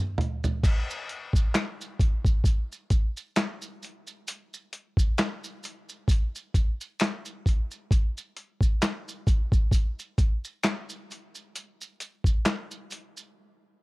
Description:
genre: R&B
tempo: 66 BPM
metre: 4/4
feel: swing 57% on 16ths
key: none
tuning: none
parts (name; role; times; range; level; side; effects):
- boom bap sampler-style drum kit; drums; 0.2-13.2 s; crash cymbal, handclaps, hi-hat, kick drum, snare drum, toms; -24 LUFS; equal; none
- maracas and finger snaps; percussion; 0.4-13.4 s; none; -36 LUFS; left 2 dB; none
room: little or no reverb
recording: dry, close 1970s-style studio recording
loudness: -24 LUFS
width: side -22 dB against mid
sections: 0.6-13.8 A section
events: drum fill 0.0-0.6; break 13.4-13.8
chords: none

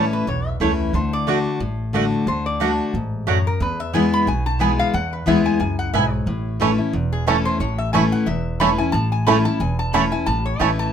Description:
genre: bluegrass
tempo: 180 BPM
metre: 4/4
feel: swing 56% on 8ths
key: A major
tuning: A4 = 440 Hz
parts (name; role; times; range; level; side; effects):
- lap resonator guitar; second line; 0.0-10.9 s; G#4 to B5; -25 LUFS; left 1 dB; none
- picked steel-string acoustic guitar; accompaniment; 0.0-10.9 s; E2 to F#4; -21 LUFS; left 3 dB; none
- mandolin; stabs; 0.0-10.7 s; A3 to A5; -23 LUFS; right 9 dB; none
- upright bass; bass; 0.0-10.9 s; E1 to E2; -24 LUFS; equal; none
- bluegrass banjo; melody; 6.6-10.7 s; A3 to E4; -21 LUFS; right 8 dB; none
room: moderate studio ambience, RT60 0.5 s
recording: minimal, uncompressed stereo recording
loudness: -18 LUFS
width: side -8 dB against mid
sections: 0.0-10.9 A section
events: resonator guitar played with a steel bar solo 0.0-10.9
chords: 0.0 A; 0.9 D; 3.6 E; 6.3 A

